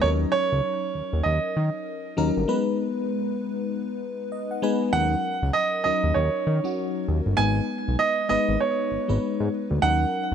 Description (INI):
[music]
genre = R&B, new jack swing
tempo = 98 BPM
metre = 4/4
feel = swing 60% on 16ths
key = G# minor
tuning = A4 = 440 Hz
[part]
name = clear baby grand piano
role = melody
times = 0.0-10.3 s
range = C#5 to G#5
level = -25 LUFS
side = right 5 dB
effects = none
[part]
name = FM electric piano with soft pad layer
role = accompaniment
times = 0.0-10.3 s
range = F#3 to G#5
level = -27 LUFS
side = left 4 dB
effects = chorus
[part]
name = fat analog bass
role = bass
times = 0.0-10.3 s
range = G1 to D#3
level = -24 LUFS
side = equal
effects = none
[sound]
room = light reverb, small room ambience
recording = none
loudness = -22 LUFS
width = side -8 dB against mid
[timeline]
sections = 0.0-4.9 A section; 4.9-10.3 B section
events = break 2.5-4.9; FM electric piano fill 4.0-4.9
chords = 0.0 D#m7; 2.5 G#m; 4.9 D#m7; 7.4 G#m; 9.8 D#m7